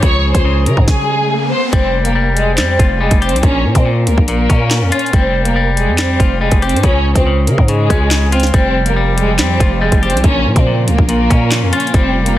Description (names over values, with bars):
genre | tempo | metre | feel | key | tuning
hip hop, drill | 141 BPM | 4/4 | half-time | F minor | A4 = 441 Hz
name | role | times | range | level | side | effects
warm studio violin section | melody | 0.0-12.4 s | Ab3 to Db6 | -17 LUFS | equal | low-pass filter, tape echo
clean electric guitar | accompaniment | 0.0-12.4 s | Bb2 to G4 | -19 LUFS | left 5 dB | spring reverb, low-pass filter
dark studio string section | sustained chords | 0.0-0.9, 8.5-12.4 s | C3 to Ab4 | -22 LUFS | right 2 dB | none
growling 808-style bass | bass | 0.0-12.4 s | F1 to Db3 | -15 LUFS | equal | none
drill drum kit | drums | 0.0-12.4 s | handclaps, hi-hat, kick drum, rim click, snare drum | -14 LUFS | equal | none
riser | sound effects | 1.0-1.7 s | none | -24 LUFS | right 2 dB | none
room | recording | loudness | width
little or no reverb | dense, heavily limited modern master | -11 LUFS | side -14 dB against mid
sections
0.0-1.7 A section; 1.7-12.4 B section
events
stop 0.9-1.7; riser 1.0-1.7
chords
0.0 Db; 1.7 Fmadd9; 3.4 Bbm; 5.1 Fmadd9; 6.8 Db; 8.5 Fmadd9; 10.2 Bbm